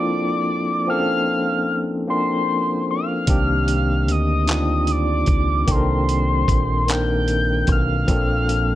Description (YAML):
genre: slow six-eight R&B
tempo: 50 BPM (dotted quarters)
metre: 6/8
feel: straight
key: C dorian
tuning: A4 = 440 Hz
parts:
  - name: soft octave-layered synth lead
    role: melody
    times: 0.0-8.8 s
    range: C6 to G6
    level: -23 LUFS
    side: equal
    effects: chorus, phaser, slapback echo
  - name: barky tine electric piano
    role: accompaniment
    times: 0.0-8.8 s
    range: Eb3 to Bb4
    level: -22 LUFS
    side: left 1 dB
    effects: overdrive, fast tremolo
  - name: deep dub fingered electric bass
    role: bass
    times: 3.3-8.8 s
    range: Bb1 to D2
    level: -21 LUFS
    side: equal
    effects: none
  - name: dusty soul sampler-style drum kit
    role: drums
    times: 3.3-8.7 s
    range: handclaps, hi-hat, kick drum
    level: -21 LUFS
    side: equal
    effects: none
room: little or no reverb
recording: none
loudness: -17 LUFS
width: side -14 dB against mid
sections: 0.0-8.8 A section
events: none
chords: 0.0 Bbmaj9; 3.3 Cm9; 8.1 Bbmaj9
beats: | 0.88 2.08 | 3.28 4.48 | 5.68 6.88 | 8.08